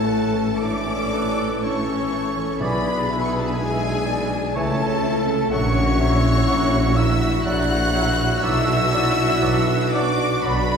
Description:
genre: classical, slow romantic movement for symphony orchestra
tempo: 52-63 BPM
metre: 3/4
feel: rubato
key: B minor from 5.5 s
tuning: A4 = 440 Hz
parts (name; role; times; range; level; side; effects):
- rich studio violin section; melody; 0.0-10.8 s; G#5 to F#6; -28 LUFS; left 2 dB; none
- dark clarinet; second line; 0.0-10.8 s; B4 to F#5; -31 LUFS; left 1 dB; none
- mellow hollow silver concert flute; second line; 0.0-10.8 s; G#5 to F#6; -28 LUFS; equal; none
- rich studio violin section; second line; 0.0-10.8 s; G#4 to F#5; -30 LUFS; left 2 dB; none
- rich studio viola section; accompaniment; 0.0-10.8 s; A3 to A4; -31 LUFS; equal; none
- mellow French horn section; sustained chords; 0.0-10.8 s; G#3 to F#4; -26 LUFS; left 5 dB; none
- warm trombone section; sustained chords; 0.0-10.8 s; E3 to E4; -33 LUFS; right 1 dB; none
- concert harp; arpeggios; 0.0-10.8 s; A2 to A5; -34 LUFS; left 4 dB; none
- clear trumpet section; stabs; 0.0-10.8 s; F#4 to A4; -29 LUFS; right 2 dB; none
- mellow tuba; bass; 0.0-10.8 s; A1 to C#2; -28 LUFS; equal; none
- rich studio cello section; bass; 0.0-10.8 s; A2 to C#3; -27 LUFS; right 3 dB; none
- warm studio double bass section; bass; 0.0-10.8 s; A1 to C#2; -27 LUFS; right 2 dB; none
- warm oboe; second line; 2.6-10.6 s; C#5 to E5; -35 LUFS; right 1 dB; none
- mellow bassoon; accompaniment; 2.6-10.6 s; E3 to F#3; -34 LUFS; right 2 dB; none
- timpani; percussion; 2.6-4.0 s; B2; -34 LUFS; right 1 dB; none
room: wet scoring stage reverb, RT60 1.4 s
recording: heard from further back in the room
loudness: -18 LUFS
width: side -6 dB against mid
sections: 0.0-10.8 A section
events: none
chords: 0.0 A; 2.6 E7/B; 4.6 A/C#; 5.5 F#7/A#; 8.4 Bm

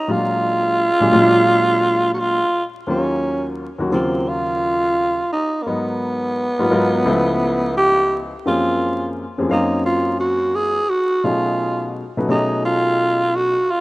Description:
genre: hip hop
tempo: 86 BPM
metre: 4/4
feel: swing 65% on 16ths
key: unclear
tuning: A4 = 439 Hz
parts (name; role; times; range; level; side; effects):
- growling tenor saxophone; melody; 0.0-13.8 s; Bb3 to Ab4; -18 LUFS; right 1 dB; none
- warm upright piano; accompaniment; 0.1-13.5 s; Db2 to F5; -20 LUFS; left 1 dB; none
room: light reverb, small room ambience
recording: rough home demo mix, vinyl crackle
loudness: -16 LUFS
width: side -20 dB against mid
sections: 0.0-13.8 A section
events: none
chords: 0.1 Bb7b13; 2.9 Ebm9; 5.7 Abm7; 7.1 Db7alt; 8.5 Gbmaj9#11; 11.2 Cb13

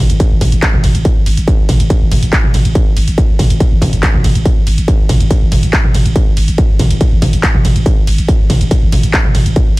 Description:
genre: driving peak-time techno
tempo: 141 BPM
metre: 4/4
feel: straight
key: unclear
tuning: A4 = 439 Hz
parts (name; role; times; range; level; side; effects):
- growling 808-style bass; bass; 0.0-9.8 s; G#1; -16 LUFS; equal; tube saturation, sidechain pumping, low-pass filter
- techno drum kit; drums; 0.1-9.8 s; handclaps, hi-hat, ride cymbal, toms; -17 LUFS; right 1 dB; sidechain pumping on hats, sidechain pumping on toms, sidechain pumping on cymbals
- electronic kick drum; drums; 0.2-9.7 s; none; -11 LUFS; equal; distortion
room: little or no reverb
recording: none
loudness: -9 LUFS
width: side -20 dB against mid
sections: 0.0-9.8 A section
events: none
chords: none

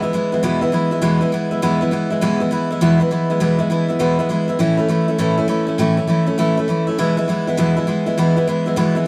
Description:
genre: rock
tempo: 201 BPM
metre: 4/4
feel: swing 64% on 8ths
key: E major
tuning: A4 = 441 Hz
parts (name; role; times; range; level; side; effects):
- picked steel-string acoustic guitar; solo; 0.0-9.1 s; E2 to E4; -18 LUFS; equal; none
room: moderate stone room reverb, RT60 1.0 s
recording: band playing live in one room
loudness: -18 LUFS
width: mono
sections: 0.0-9.1 A section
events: none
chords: 0.0 E; 4.6 A; 7.0 E

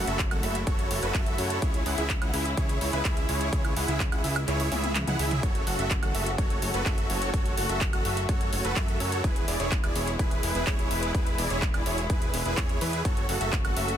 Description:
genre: EDM, festival progressive house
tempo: 126 BPM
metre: 4/4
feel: straight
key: F# minor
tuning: A4 = 440 Hz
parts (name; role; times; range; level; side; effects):
- muted studio string section; sustained chords; 0.0-14.0 s; B2 to F#4; -35 LUFS; left 2 dB; sidechain pumping
- supersaw chords; riff; 0.0-13.9 s; E4 to F#5; -30 LUFS; right 2 dB; sidechain pumping, dub echo
- fat analog bass; bass; 0.0-14.0 s; E1 to F#2; -32 LUFS; equal; sidechain pumping
- big-room dance drum kit; drums; 0.1-14.0 s; handclaps, hi-hat, toms, woodblock; -33 LUFS; equal; none
- electronic kick drum; drums; 0.2-13.6 s; none; -27 LUFS; equal; none
room: digital ambience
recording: dense, heavily limited modern master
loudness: -24 LUFS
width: side -10 dB against mid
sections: 0.0-14.0 A section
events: kick drops out 4.5-5.4; drum fill 4.7-5.4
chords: 0.0 F#m; 1.6 C#m; 5.4 F#m; 9.2 E; 13.1 F#m

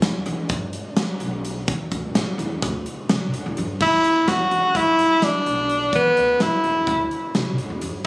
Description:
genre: progressive instrumental, band music in an uneven meter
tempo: 254 BPM (eighths)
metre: 9/8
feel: straight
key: E dorian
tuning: A4 = 438 Hz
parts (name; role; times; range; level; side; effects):
- upright bass; bass; 0.0-8.0 s; B1 to E3; -28 LUFS; equal; none
- huge arena drum kit; drums; 0.0-7.9 s; crash cymbal, hi-hat, kick drum, snare drum; -24 LUFS; equal; none
- edgy tenor saxophone; melody; 3.8-7.1 s; B3 to F#4; -17 LUFS; equal; tape echo
room: moderate studio reverb, RT60 0.7 s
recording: recorded on a phone in the room, club ambience, compression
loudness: -18 LUFS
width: side -24 dB against mid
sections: 0.0-3.8 A section; 3.8-8.1 B section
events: none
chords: 0.0 Em7

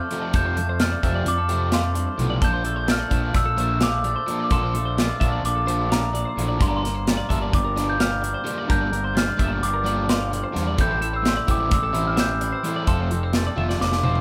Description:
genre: math rock and midwest emo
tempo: 258 BPM (eighths)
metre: 9/8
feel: straight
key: F major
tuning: A4 = 441 Hz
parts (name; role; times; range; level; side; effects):
- glockenspiel with rubber mallets; melody; 0.0-14.2 s; Bb5 to G6; -28 LUFS; equal; none
- twangy electric guitar; accompaniment; 0.0-14.2 s; F2 to A4; -35 LUFS; equal; none
- twelve-string electric guitar; arpeggios; 0.0-14.2 s; A4 to F5; -35 LUFS; equal; none
- crunchy overdriven guitar; riff; 0.1-14.2 s; Bb2 to F4; -32 LUFS; equal; none
- modern studio drum kit; drums; 0.1-14.2 s; hi-hat, kick drum, snare drum, toms; -26 LUFS; equal; none
- fuzz fingered electric bass; bass; 0.3-14.2 s; F1 to F2; -28 LUFS; equal; overdrive
room: light reverb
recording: band playing live in one room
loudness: -22 LUFS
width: mono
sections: 0.0-14.2 A section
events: drum fill 13.6-14.2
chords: 0.0 F6; 2.4 Bbmaj7; 6.6 Gm7; 10.8 Am7; 12.9 F

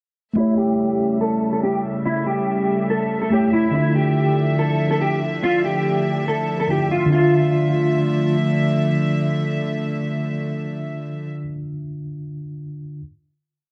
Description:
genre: hip hop, trap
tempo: 142 BPM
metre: 4/4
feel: half-time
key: D harmonic minor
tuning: A4 = 442 Hz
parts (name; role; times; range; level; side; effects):
- mellow tine electric piano; accompaniment; 0.3-13.0 s; D3 to E5; -24 LUFS; equal; low-pass filter
- mellow electric guitar; melody; 0.4-8.4 s; E4 to A4; -24 LUFS; equal; ensemble chorus, low-pass filter
- warm symphonic string section; sustained chords; 0.4-11.3 s; C#3 to E5; -27 LUFS; equal; low-pass filter
room: moderate spring reverb, RT60 1.1 s, small room ambience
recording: dark, warm production, nothing above 10.8 kHz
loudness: -20 LUFS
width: mono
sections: 0.4-7.1 breakdown; 7.1-10.5 final chord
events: filter sweep 0.4-7.1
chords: 0.4 A7; 3.7 Dmadd9

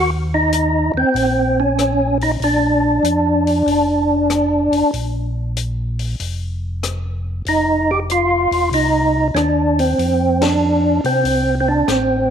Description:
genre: soul jazz organ trio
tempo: 95 BPM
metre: 4/4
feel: swing 67% on 8ths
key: Bb major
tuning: A4 = 440 Hz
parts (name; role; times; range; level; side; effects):
- percussive tonewheel organ; melody; 0.0-12.3 s; C4 to G4; -15 LUFS; equal; slow rotary speaker, overdrive, chorus vibrato
- mellow tonewheel organ; bass; 0.0-12.3 s; E1 to C3; -21 LUFS; equal; slow rotary speaker
- compact cocktail drum kit; drums; 0.5-12.1 s; hi-hat, ride cymbal, rim click, snare drum; -28 LUFS; left 6 dB; none
room: moderate plate reverb, RT60 1.7 s, small room ambience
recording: 1960s-style stereo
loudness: -15 LUFS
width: side -8 dB against mid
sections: 0.0-12.3 A section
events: band accent 10.3-10.6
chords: 0.0 Eb5; 2.4 Bb; 7.5 F7

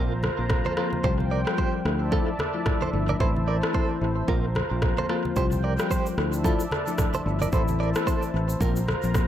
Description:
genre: afrobeats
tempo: 111 BPM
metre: 4/4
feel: swing 58% on 16ths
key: D minor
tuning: A4 = 440 Hz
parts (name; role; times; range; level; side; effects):
- mellow tine electric piano; accompaniment; 0.0-9.3 s; E3 to F4; -30 LUFS; left 5 dB; wide subtle chorus
- warm analog pad; sustained chords; 0.0-9.3 s; F4 to Bb5; -33 LUFS; right 1 dB; chorus
- direct-recorded clean electric guitar; riff; 0.0-8.8 s; F4 to D5; -32 LUFS; right 5 dB; tremolo, tape echo
- fingered electric bass; bass; 0.0-9.2 s; G1 to D2; -27 LUFS; equal; none
- deep house drum kit; drums; 0.2-9.3 s; kick drum, rim click, shaker; -27 LUFS; equal; overdrive, tape echo
- congas; percussion; 0.2-9.3 s; none; -33 LUFS; right 2 dB; none
room: moderate spring reverb, RT60 1.5 s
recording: echo-heavy mix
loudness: -22 LUFS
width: side -11 dB against mid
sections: 0.0-9.3 A section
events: break 0.0-5.4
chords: 0.0 Bbsus2; 1.0 Csus4; 1.9 Dmadd9; 3.2 Am; 4.3 Bbsus2; 5.4 Csus4; 6.2 Dmadd9; 7.5 Am; 8.6 Bbsus2

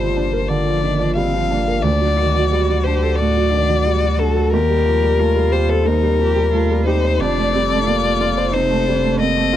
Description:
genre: neoclassical piano and strings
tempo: 89 BPM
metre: 4/4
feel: rubato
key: G minor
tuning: A4 = 439 Hz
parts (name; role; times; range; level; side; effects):
- rich violin; melody; 0.0-9.6 s; A4 to F5; -19 LUFS; left 6 dB; none
- felt-muted upright piano; accompaniment; 0.0-9.6 s; D2 to C5; -20 LUFS; right 4 dB; none
- warbly tape-like pad; sustained chords; 0.0-9.6 s; A3 to F#5; -30 LUFS; right 1 dB; none
- punchy sub bass; bass; 0.0-9.6 s; F1 to Eb2; -20 LUFS; equal; none
- rich cello; second line; 0.5-9.6 s; Bb3 to G4; -26 LUFS; right 5 dB; none
room: little or no reverb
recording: dry, close 1970s-style studio recording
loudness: -15 LUFS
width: side -11 dB against mid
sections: 0.0-9.6 A section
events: none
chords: 0.0 Gm7; 1.8 D; 4.5 Cm7/Eb; 7.2 F

